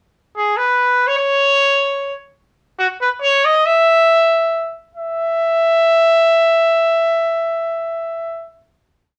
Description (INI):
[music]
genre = mexican folk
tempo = free time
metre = none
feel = none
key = E major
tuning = A4 = 442 Hz
[part]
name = bright trumpet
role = solo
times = 0.4-8.5 s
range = F#4 to E5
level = -16 LUFS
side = equal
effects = slapback echo
[sound]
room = light reverb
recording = none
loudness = -15 LUFS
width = mono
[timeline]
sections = 0.0-4.9 A section; 4.9-7.7 final note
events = slowing down 2.4-4.9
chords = none